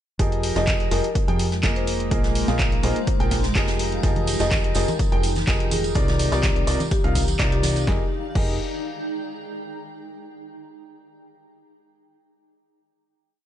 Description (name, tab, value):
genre	piano house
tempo	125 BPM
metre	4/4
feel	swing 53% on 16ths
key	F dorian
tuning	A4 = 440 Hz
part	clear upright piano	riff	0.2-8.5 s	C3 to G5	-26 LUFS	right 1 dB	sidechain pumping, ping-pong delay
part	deep dub fingered electric bass	bass	0.2-8.6 s	F1 to F2	-26 LUFS	equal	sidechain pumping
part	electronic kick drum	drums	0.2-8.5 s	none	-23 LUFS	equal	none
part	jazz brush drum kit	drums	0.2-7.8 s	hi-hat, snare drum	-37 LUFS	right 2 dB	none
part	punchy analog drum machine	drums	0.2-8.5 s	crash cymbal, handclaps, hi-hat, snare drum	-30 LUFS	equal	none
part	granular cloud pad	texture	1.1-9.8 s	Ab3 to Bb5	-33 LUFS	left 1 dB	built-in reverb, lush chorus, sidechain pumping
part	marimba with medium mallets	melody	0.6-7.9 s	G4 to F5	-30 LUFS	left 3 dB	ping-pong delay
part	tambourine and congas	percussion	4.0-7.9 s	none	-31 LUFS	right 2 dB	none
room	light reverb, studio reverb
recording	nothing above 10.4 kHz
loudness	-19 LUFS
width	side -11 dB against mid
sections	0.2-7.9 drop; 7.9-9.8 final chord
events	drop 0.2-7.9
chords	0.2 Fm11; 6.0 Cm11; 7.9 Fm11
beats	| 0.19 0.67 1.15 1.63 | 2.11 2.59 3.07 3.55 | 4.03 4.51 4.99 5.47 | 5.95 6.43 6.91 7.39 | 7.87 8.35 8.83 9.31